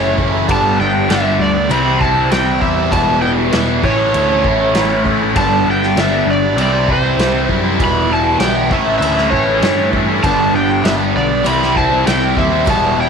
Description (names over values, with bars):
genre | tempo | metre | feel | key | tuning
classic rock | 98 BPM | 4/4 | straight | unclear | A4 = 435 Hz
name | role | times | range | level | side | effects
overdriven slide guitar | melody | 0.0-13.1 s | C5 to B5 | -18 LUFS | equal | slapback echo
picked twelve-string acoustic guitar | accompaniment | 0.0-13.1 s | E2 to G4 | -25 LUFS | right 12 dB | none
biting overdriven guitar | riff | 0.0-13.1 s | E2 to G4 | -19 LUFS | left 14 dB | phaser
overdriven electric guitar | riff | 0.0-13.1 s | E2 to C4 | -19 LUFS | equal | phaser
tight distorted guitar | riff | 0.0-13.1 s | G2 to E4 | -22 LUFS | right 12 dB | distortion
growling picked electric bass | bass | 0.0-13.1 s | E1 to G2 | -21 LUFS | equal | overdrive
vintage drum kit | drums | 0.2-12.8 s | crash cymbal, kick drum, snare drum | -22 LUFS | right 1 dB | none
room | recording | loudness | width
light reverb, studio reverb | 1960s-style stereo with parts hard left and right | -12 LUFS | side -6 dB against mid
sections
0.0-13.1 A section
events
none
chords
0.5 G; 1.7 C; 2.9 Em; 3.8 A; 5.4 G; 6.6 C; 7.8 Em; 8.7 A; 10.2 G; 11.4 C